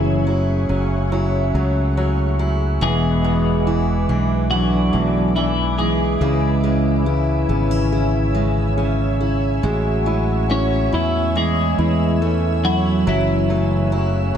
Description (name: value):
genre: pop ballad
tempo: 70 BPM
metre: 4/4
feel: straight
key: A major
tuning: A4 = 440 Hz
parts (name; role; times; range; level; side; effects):
- twelve-string electric guitar; melody; 0.0-13.9 s; E3 to C#5; -21 LUFS; right 1 dB; wide subtle chorus
- warm French horn section; second line; 0.0-14.4 s; B2 to F#4; -26 LUFS; left 6 dB; none
- clear concert grand piano; accompaniment; 0.0-14.4 s; C#3 to E4; -25 LUFS; left 1 dB; none
- shimmering ambient pad; sustained chords; 0.0-14.4 s; G#4 to E6; -28 LUFS; right 1 dB; chorus, built-in reverb
- picked steel-string acoustic guitar; arpeggios; 0.0-14.4 s; E2 to E4; -27 LUFS; right 6 dB; none
- fingered electric bass; bass; 0.0-14.4 s; E1 to E2; -20 LUFS; equal; none
room: light reverb, studio reverb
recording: dark, warm production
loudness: -16 LUFS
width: side -8 dB against mid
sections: 0.0-14.4 A section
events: none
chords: 0.0 F#m7; 2.8 E7; 6.2 C#m; 9.6 Amaj7; 13.1 F#m7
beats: 0.28 1.13 1.98 | 2.83 3.67 4.52 5.37 | 6.21 7.06 7.92 8.77 | 9.63 10.50 11.36 12.22 | 13.07 13.92